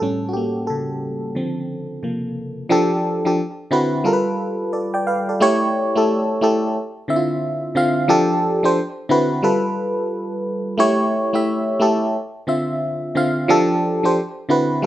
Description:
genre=R&B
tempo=89 BPM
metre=4/4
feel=swing 64% on 16ths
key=unclear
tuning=A4 = 439 Hz
part: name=FM electric piano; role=solo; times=0.0-14.9 s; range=A2 to G5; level=-17 LUFS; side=equal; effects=chorus
room=light reverb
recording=recorded outdoors, with no room sound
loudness=-17 LUFS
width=side -13 dB against mid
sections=0.0-2.7 A section; 2.7-14.9 B section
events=FM electric piano solo 0.0-2.7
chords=0.0 A7; 1.3 Dm7; 2.0 C7sus4; 2.7 F69; 3.4 D13; 4.0 G9; 5.4 A7; 6.7 Dm9; 8.1 F69; 8.8 D13; 9.4 G9; 10.8 A7; 12.1 Dm9; 13.5 F69; 14.2 D13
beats=| 0.00 0.67 1.34 2.02 | 2.69 3.37 4.04 4.71 | 5.39 6.06 6.74 7.41 | 8.09 8.76 9.43 10.11 | 10.78 11.46 12.13 12.80 | 13.48 14.15 14.83

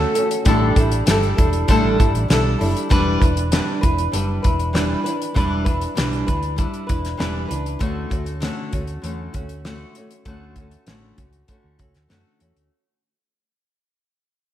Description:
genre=indie pop, bedroom pop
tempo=98 BPM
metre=4/4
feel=straight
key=D major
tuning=A4 = 440 Hz
part: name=flamenco guitar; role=accompaniment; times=0.0-12.7 s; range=A2 to B4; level=-21 LUFS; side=equal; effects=lush chorus, warbly pitch drift, slapback echo
part: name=hollow-body short-scale fingered electric bass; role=bass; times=0.0-12.7 s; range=E1 to F#2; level=-23 LUFS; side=equal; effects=none
part: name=damped 70s drum kit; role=drums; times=0.2-12.7 s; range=hi-hat, kick drum, snare drum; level=-21 LUFS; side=equal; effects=none
room=moderate recital hall reverb, RT60 1.6 s, studio ambience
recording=big arena sound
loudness=-17 LUFS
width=side -12 dB against mid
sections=0.0-2.9 A section; 2.9-12.7 B section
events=fade-out 2.9-12.7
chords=0.5 A7sus4; 2.9 Em7; 7.8 Dmaj7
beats=| 0.46 1.07 1.69 2.30 | 2.91 3.52 4.13 4.75 | 5.36 5.97 6.58 7.20 | 7.81 8.42 9.03 9.64 | 10.26 10.87 11.48 12.10

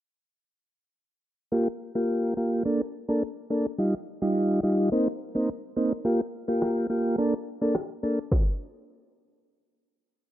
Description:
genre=dancehall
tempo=106 BPM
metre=4/4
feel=straight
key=G minor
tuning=A4 = 438 Hz
part: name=tonewheel organ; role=accompaniment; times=1.5-8.2 s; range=G3 to A4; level=-25 LUFS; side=equal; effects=slow rotary speaker
part: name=afro-pop drum kit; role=drums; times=6.6-8.5 s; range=kick drum, rim click, snare drum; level=-25 LUFS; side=equal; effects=vintage 12-bit sampler grit
room=light reverb, digital ambience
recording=dry, gritty hardware recording, low-pass filter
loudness=-24 LUFS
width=side -13 dB against mid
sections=1.5-10.3 A section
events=stop 8.3-10.3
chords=1.5 Gm7; 2.7 Bbmaj7; 3.8 Ebadd9; 4.9 Cm7; 6.1 Gm7; 7.2 Bbmaj7; 8.3 N.C.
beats=| 1.52 2.09 2.65 3.22 | 3.79 4.35 4.92 5.49 | 6.05 6.62 7.18 7.75 | 8.31

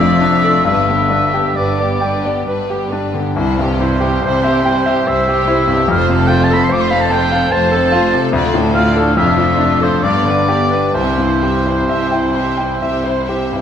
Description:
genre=classical, romantic movement for piano and orchestra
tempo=62-74 BPM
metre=3/4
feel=rubato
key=C major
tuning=A4 = 440 Hz
part: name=clear concert grand piano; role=melody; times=0.0-13.6 s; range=C2 to C6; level=-16 LUFS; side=left 2 dB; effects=none
part: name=rich studio violin section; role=melody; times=0.0-13.6 s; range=F4 to F5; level=-27 LUFS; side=left 1 dB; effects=none
part: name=clear oboe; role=second line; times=0.0-13.2 s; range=C5 to D6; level=-18 LUFS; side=right 1 dB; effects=none
part: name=rich studio violin section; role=second line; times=0.0-13.6 s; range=B3 to B4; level=-25 LUFS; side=left 3 dB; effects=none
part: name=rich studio viola section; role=accompaniment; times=0.0-13.6 s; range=F3 to F4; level=-25 LUFS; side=right 1 dB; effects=none
part: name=mellow French horn section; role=sustained chords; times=0.0-13.4 s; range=A3 to F4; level=-24 LUFS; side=left 3 dB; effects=none
part: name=clear studio double bass section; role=bass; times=0.0-13.6 s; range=F1 to D2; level=-24 LUFS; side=right 3 dB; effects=none
part: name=rich studio cello section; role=bass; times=0.0-13.6 s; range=D2 to C3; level=-21 LUFS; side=right 1 dB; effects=none
room=moderate scoring stage reverb, RT60 1.9 s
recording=none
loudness=-12 LUFS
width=side -8 dB against mid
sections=0.0-13.6 A section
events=none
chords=0.0 Dm/F; 0.7 G; 3.4 C; 5.9 F; 8.3 Dm; 9.2 Dm/F; 10.0 G; 10.9 C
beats=| 0.66 1.56 2.47 | 3.37 4.24 5.07 | 5.90 6.72 7.53 | 8.34 9.17 10.04 | 10.95 11.90 12.83

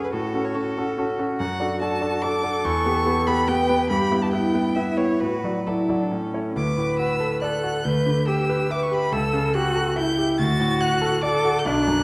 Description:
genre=quick classical-period movement for piano trio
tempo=142 BPM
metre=3/4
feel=rubato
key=D major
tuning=A4 = 440 Hz
part: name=clear violin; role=melody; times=0.0-12.0 s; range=A4 to A6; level=-30 LUFS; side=equal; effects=none
part: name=rich cello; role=second line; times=0.0-12.0 s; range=C#4 to B4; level=-28 LUFS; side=equal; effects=none
part: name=clear concert grand piano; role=accompaniment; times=0.0-12.0 s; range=B1 to E5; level=-26 LUFS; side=equal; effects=none
room=wet recital hall reverb, RT60 1.7 s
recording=dark, warm production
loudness=-23 LUFS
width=mono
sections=0.0-6.6 A section; 6.6-12.0 B section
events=none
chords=0.1 F#m/A; 1.4 D/F#; 2.6 Em; 3.9 Em/G; 5.2 D/A; 6.1 A; 6.6 D; 7.9 Em7/D; 9.1 A7/C#; 10.4 D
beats=| 0.13 0.55 0.98 | 1.40 1.81 2.23 | 2.65 3.07 3.49 | 3.90 4.33 4.76 | 5.21 5.67 6.12 | 6.57 7.00 7.42 | 7.85 8.28 8.71 | 9.13 9.56 9.98 | 10.40 10.81 11.23 | 11.65

